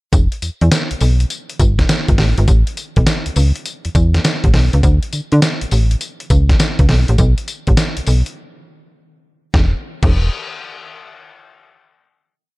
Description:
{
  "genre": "R&B, new jack swing",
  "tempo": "102 BPM",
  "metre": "4/4",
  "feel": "swing 66% on 16ths",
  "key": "unclear",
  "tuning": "A4 = 442 Hz",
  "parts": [
    { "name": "slap-like FM bass", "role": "bass", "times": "0.1-10.3 s", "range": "E1 to D3", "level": "-13 LUFS", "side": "equal", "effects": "none" },
    { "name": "dusty soul sampler-style drum kit", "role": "drums", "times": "0.1-10.1 s", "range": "crash cymbal, hi-hat, kick drum, snare drum, tambourine", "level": "-16 LUFS", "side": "equal", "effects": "none" }
  ],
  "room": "little or no reverb",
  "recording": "dark, warm production",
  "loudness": "-13 LUFS",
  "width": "side -22 dB against mid",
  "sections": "0.1-9.5 chorus; 9.5-11.9 final note",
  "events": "break 8.4-9.5",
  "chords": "none",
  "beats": "| 0.13 0.71 1.30 1.89 | 2.48 3.07 3.66 4.25 | 4.83 5.42 6.01 6.60 | 7.19 7.77 8.36 8.95 | 9.54 10.13"
}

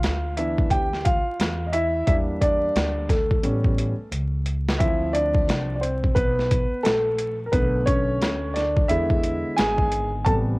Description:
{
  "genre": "hip hop, jazz-hop",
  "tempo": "88 BPM",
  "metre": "4/4",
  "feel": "swing 61% on 16ths",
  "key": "unclear",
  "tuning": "A4 = 440 Hz",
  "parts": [
    { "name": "warm grand piano", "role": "accompaniment", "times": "0.0-10.6 s", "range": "C3 to A5", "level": "-23 LUFS", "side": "equal", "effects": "none" },
    { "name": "upright bass", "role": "bass", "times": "0.0-10.6 s", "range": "G#1 to E2", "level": "-27 LUFS", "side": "equal", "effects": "none" },
    { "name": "boom bap sampler-style drum kit", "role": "drums", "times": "0.0-10.5 s", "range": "hi-hat, kick drum, snare drum", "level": "-23 LUFS", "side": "equal", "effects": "overdrive, cassette tape" }
  ],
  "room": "light reverb, small room ambience",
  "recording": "home recording on cassette, vinyl crackle",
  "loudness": "-20 LUFS",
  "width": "side -23 dB against mid",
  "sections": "0.0-10.6 A section",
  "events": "grand piano solo 0.0-10.6; drum fill 4.1-4.8",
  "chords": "0.0 Cmaj9 (rootless); 2.1 Em7b5; 3.4 A7; 4.8 Dm7; 7.5 Bm7; 8.9 E7",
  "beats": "0.03 0.71 1.39 | 2.08 2.76 3.44 4.12 | 4.80 5.49 6.17 6.85 | 7.53 8.21 8.89 9.58 | 10.26"
}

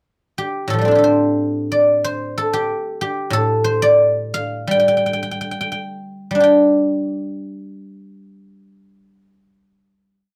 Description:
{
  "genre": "chinese traditional, Chinese solo plucked strings",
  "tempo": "58-96 BPM",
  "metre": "2/4",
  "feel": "rubato",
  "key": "G shang mode",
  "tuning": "A4 = 440 Hz",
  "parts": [
    { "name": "guzheng", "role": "solo", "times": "0.4-10.4 s", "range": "A2 to G5", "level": "-18 LUFS", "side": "equal", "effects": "none" }
  ],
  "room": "light reverb",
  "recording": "close, detailed microphones",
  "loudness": "-18 LUFS",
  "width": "mono",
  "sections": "0.0-0.7 pickup bar; 0.7-6.4 A section; 6.4-10.4 final chord",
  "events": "slowing down 3.3-6.4",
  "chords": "none",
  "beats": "0.04 | 0.70 1.38 | 2.05 2.69 | 3.32 3.98 | 4.69 5.49 | 6.43 7.43 | 8.40 9.38"
}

